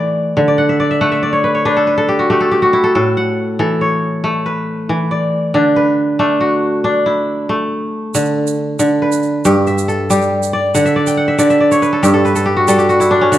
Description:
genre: west african traditional, West African string and xylophone music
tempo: 92 BPM (dotted quarters)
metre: 12/8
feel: straight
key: D major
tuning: A4 = 440 Hz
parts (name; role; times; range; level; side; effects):
- kora; arpeggios; 0.0-13.4 s; G2 to G5; -12 LUFS; equal; none
- egg shaker; percussion; 8.1-13.4 s; none; -25 LUFS; right 10 dB; none
room: wet recital hall reverb, RT60 1.8 s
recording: dark, warm production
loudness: -12 LUFS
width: side -12 dB against mid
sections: 0.0-8.1 A section; 8.1-13.4 B section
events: kora fill 0.5-3.0, 10.7-13.3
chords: 0.4 D5; 3.0 A; 5.5 D; 8.1 Bm/D; 9.4 G; 10.7 N.C.

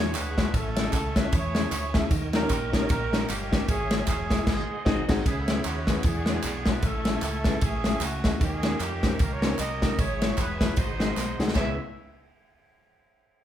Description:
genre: uptempo gospel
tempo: 152 BPM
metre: 4/4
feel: swing 59% on 8ths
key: C# minor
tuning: A4 = 440 Hz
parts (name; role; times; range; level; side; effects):
- warm horn section; melody; 0.0-11.8 s; A#3 to E5; -32 LUFS; right 2 dB; none
- clear grand piano; accompaniment; 0.0-11.8 s; C#2 to F#5; -32 LUFS; left 2 dB; none
- bright tonewheel organ; sustained chords; 0.0-11.8 s; A3 to C#6; -39 LUFS; right 3 dB; fast rotary speaker, chorus vibrato
- fingered electric bass; bass; 0.0-11.8 s; E1 to E#2; -33 LUFS; equal; none
- natural country drum kit; drums; 0.1-11.7 s; crash cymbal, kick drum, ride cymbal, snare drum; -26 LUFS; equal; none
- handclaps and tambourine; percussion; 0.1-11.8 s; none; -39 LUFS; right 2 dB; none
room: light reverb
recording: band playing live in one room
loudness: -23 LUFS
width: side -11 dB against mid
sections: 0.0-5.3 A section; 5.3-11.6 B section; 11.6-13.1 C section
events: band accent 4.5-5.3; drum fill 11.2-11.6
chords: 0.0 E13; 0.5 Amaj7; 2.1 D#7; 3.7 C#m/G#; 4.5 G#7; 5.3 C#m7; 6.0 E13; 6.8 Amaj7; 8.4 D#7; 10.0 C#m/G#; 10.8 G#7; 11.6 C#m7

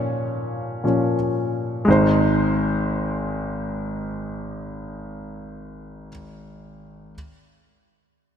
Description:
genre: pop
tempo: free time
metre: none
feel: none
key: Ab major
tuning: A4 = 440 Hz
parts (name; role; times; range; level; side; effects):
- warm grand piano; accompaniment; 0.0-7.1 s; Ab1 to C5; -21 LUFS; equal; slapback echo
room: moderate lush hall reverb, RT60 2.7 s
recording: big arena sound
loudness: -20 LUFS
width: side -8 dB against mid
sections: 0.0-1.9 A section; 1.9-4.6 B section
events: grand piano solo 0.0-1.9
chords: 0.0 Bbm; 1.9 Ab

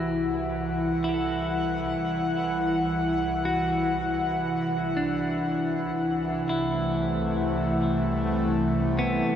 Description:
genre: ambient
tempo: free time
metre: none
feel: none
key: unclear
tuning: A4 = 441 Hz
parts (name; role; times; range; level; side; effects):
- airy breathy pad; sustained chords; 0.0-9.4 s; C3 to F#5; -25 LUFS; equal; chorus
- clean electric guitar; arpeggios; 0.0-9.4 s; B3 to A4; -32 LUFS; equal; diffuse ambient delay
- rich studio double bass section; bass; 0.0-9.4 s; C2; -35 LUFS; equal; none
room: wet huge ambient reverb, RT60 8.1 s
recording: none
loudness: -24 LUFS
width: side -9 dB against mid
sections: 0.0-9.4 A section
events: fade-in on clean electric guitar 0.0-9.4; fade-in on double bass section 0.0-9.4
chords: 0.0 Emadd9/C; 6.0 C6

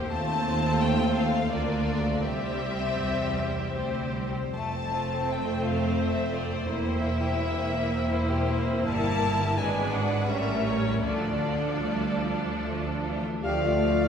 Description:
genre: classical, slow romantic movement for symphony orchestra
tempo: 72-88 BPM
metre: 3/4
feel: rubato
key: D minor from 8.9 s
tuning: A4 = 441 Hz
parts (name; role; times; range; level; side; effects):
- warm chamber violin section; melody; 0.0-14.1 s; C5 to A5; -32 LUFS; left 5 dB; none
- rich chamber violin section; second line; 0.0-14.1 s; G3 to F5; -34 LUFS; left 1 dB; none
- rich chamber viola section; accompaniment; 0.0-14.1 s; F3 to E4; -30 LUFS; right 1 dB; none
- rich chamber cello section; bass; 0.0-14.1 s; C2 to G3; -32 LUFS; right 2 dB; none
- warm chamber double bass section; bass; 0.0-14.1 s; E1 to Eb2; -32 LUFS; right 2 dB; none
- clear oboe; second line; 13.4-14.1 s; F5; -33 LUFS; right 2 dB; none
- mellow wooden flute; second line; 13.4-14.1 s; D5; -29 LUFS; left 1 dB; none
- warm clarinet; second line; 13.4-14.1 s; D5; -32 LUFS; left 6 dB; none
- warm bassoon; accompaniment; 13.4-14.1 s; A3; -35 LUFS; right 3 dB; none
- mellow French horn section; sustained chords; 13.4-14.1 s; E4 to G4; -28 LUFS; left 6 dB; none
room: wet concert hall reverb, RT60 2.1 s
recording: heard from further back in the room, faint mains hum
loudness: -25 LUFS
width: side -7 dB against mid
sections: 0.0-13.4 A section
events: none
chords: 0.1 F7/Eb; 1.5 Bb/D; 2.3 C; 4.6 F; 6.7 C7/E; 8.9 Edim/G; 9.6 E7/G#; 10.3 A7b9; 11.1 Dm

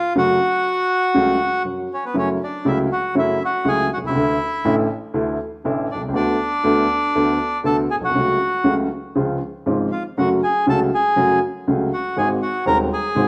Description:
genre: tango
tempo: 120 BPM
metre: 4/4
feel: rubato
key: F# minor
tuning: A4 = 440 Hz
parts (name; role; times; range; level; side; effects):
- bandoneon; melody; 0.0-13.3 s; B3 to A#5; -22 LUFS; equal; none
- dark upright piano; accompaniment; 0.2-13.3 s; D#1 to F#4; -22 LUFS; equal; none
room: wet stone room reverb, RT60 1.4 s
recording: band playing live in one room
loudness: -20 LUFS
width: mono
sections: 0.0-2.2 A section; 2.2-13.3 B section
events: none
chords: 0.1 F#m; 2.2 F#m7; 4.2 Dsus2; 6.1 Bm7/D; 8.1 F#m/C#; 9.2 C#; 10.2 F#m; 12.2 G#7

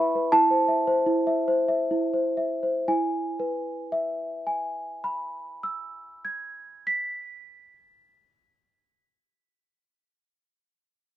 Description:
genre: classical, lullaby for celesta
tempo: 59-88 BPM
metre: 3/4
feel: straight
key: E major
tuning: A4 = 440 Hz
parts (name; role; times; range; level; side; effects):
- worn celesta; solo; 0.0-11.1 s; E4 to B6; -24 LUFS; equal; none
room: light reverb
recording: dark, warm production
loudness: -24 LUFS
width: side -13 dB against mid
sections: 0.0-2.9 A section; 2.9-8.9 B section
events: slowing down 0.0-2.9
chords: 0.3 Am/E; 2.9 E

